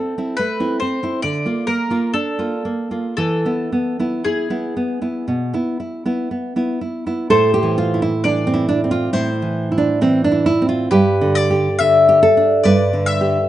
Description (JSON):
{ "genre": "romantic duo for mandolin and classical guitar", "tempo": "55-72 BPM", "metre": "4/4", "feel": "rubato", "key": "A minor", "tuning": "A4 = 440 Hz", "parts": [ { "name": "mandolin", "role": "melody", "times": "0.0-13.5 s", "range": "G#4 to E5", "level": "-20 LUFS", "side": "left 4 dB", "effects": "none" }, { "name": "nylon-string guitar", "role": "accompaniment", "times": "0.0-13.5 s", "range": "G2 to B4", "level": "-17 LUFS", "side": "right 2 dB", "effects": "none" } ], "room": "small room reverb", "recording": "rough home demo mix, nothing above 10.7 kHz", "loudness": "-15 LUFS", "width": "side -13 dB against mid", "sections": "0.0-7.3 A section; 7.3-13.5 B section", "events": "none", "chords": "0.0 Am/C; 1.2 Bb/D; 3.2 E; 7.3 Am; 10.9 G" }